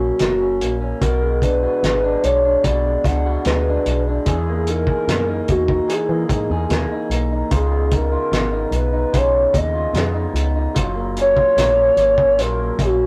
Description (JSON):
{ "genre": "indie pop, bedroom pop", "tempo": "74 BPM", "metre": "4/4", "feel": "straight", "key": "F# major", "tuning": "A4 = 442 Hz", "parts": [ { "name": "warbly nostalgic lead", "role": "melody", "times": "0.0-13.1 s", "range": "F#4 to F#5", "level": "-21 LUFS", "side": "equal", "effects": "chorus" }, { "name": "electric guitar through a small old amp", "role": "accompaniment", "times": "0.0-13.1 s", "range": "B2 to G#4", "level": "-26 LUFS", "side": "equal", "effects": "warbly pitch drift" }, { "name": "organ-like FM bass", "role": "bass", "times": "0.0-13.1 s", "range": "F#1 to E3", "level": "-24 LUFS", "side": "equal", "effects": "none" }, { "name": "cloth-damped thuddy drum kit", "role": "drums", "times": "0.2-13.0 s", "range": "hi-hat, kick drum, snare drum", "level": "-24 LUFS", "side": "equal", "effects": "none" } ], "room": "wet booth ambience, RT60 0.2 s", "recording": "rough rehearsal-room recording, warm saturation", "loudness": "-18 LUFS", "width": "mono", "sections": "0.0-13.1 A section", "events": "none", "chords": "0.0 F#; 1.0 Bm6; 4.3 Emaj7#11; 7.5 C#9; 10.8 F#maj7" }